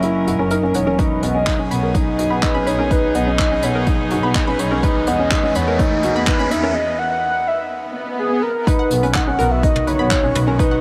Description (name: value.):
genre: piano and strings electronica.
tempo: 125 BPM.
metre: 4/4.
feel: straight.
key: B major.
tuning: A4 = 440 Hz.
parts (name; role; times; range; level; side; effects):
warm velvety synth lead; melody; 0.0-10.8 s; G#4 to F#5; -24 LUFS; equal; chorus.
muted string quartet; sustained chords; 0.0-10.8 s; D#3 to A#4; -27 LUFS; equal; sidechain pumping.
felt-muted upright piano; riff; 0.0-10.8 s; B3 to E4; -24 LUFS; equal; none.
jazz brush drum kit; drums; 0.0-10.7 s; handclaps, hi-hat, toms; -29 LUFS; equal; none.
analog pluck; arpeggios; 0.3-10.8 s; A#3 to B5; -30 LUFS; equal; chorus, sidechain pumping, digital delay.
rich symphonic double bass section; bass; 0.3-10.5 s; E1 to E2; -27 LUFS; equal; tube saturation, sidechain pumping.
electronic kick drum; drums; 1.0-10.7 s; none; -22 LUFS; equal; overdrive.
riser and swell; sound effects; 4.6-8.7 s; none; -30 LUFS; equal; none.
room: moderate huge ambient reverb, RT60 7.7 s.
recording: none.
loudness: -18 LUFS.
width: mono.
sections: 0.0-8.7 A section; 8.7-10.8 B section.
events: build-up 0.0-8.7; filter sweep on synth arpeggio sound 0.0-8.7; riser 4.6-6.8; break 6.8-8.7; swell 7.9-8.7; drop 8.7-10.8.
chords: 0.0 F#7; 1.0 B6; 4.8 Emaj7; 8.7 B.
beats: 0.03 0.51 | 0.99 1.47 1.95 2.43 | 2.91 3.39 3.87 4.35 | 4.83 5.31 5.79 6.27 | 6.75 7.23 7.71 8.19 | 8.67 9.15 9.63 10.11 | 10.59.